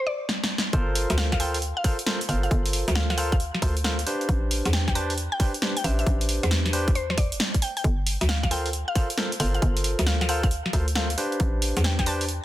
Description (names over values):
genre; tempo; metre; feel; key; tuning
UK garage, two-step garage; 135 BPM; 4/4; swing 66% on 16ths; G dorian; A4 = 439 Hz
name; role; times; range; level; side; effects
mallet-like synth pluck; melody; 0.0-12.3 s; C5 to A5; -32 LUFS; left 1 dB; chorus, dub echo
punchy analog drum machine; drums; 0.3-12.4 s; hi-hat, snare drum; -27 LUFS; equal; none
barky tine electric piano; stabs; 0.7-12.2 s; D4 to C5; -30 LUFS; equal; overdrive, dub echo
hollow knocking FM bass; bass; 0.7-12.4 s; E1 to E2; -26 LUFS; equal; none
electronic kick drum; drums; 0.7-12.1 s; none; -24 LUFS; equal; none
room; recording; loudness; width
little or no reverb; dense, heavily limited modern master; -22 LUFS; side -14 dB against mid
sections
0.7-12.4 A section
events
drum fill 0.3-0.7; drop 0.7-12.4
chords
0.0 N.C.; 0.7 Gm11; 4.1 Am11; 7.8 Gm11; 11.2 Am11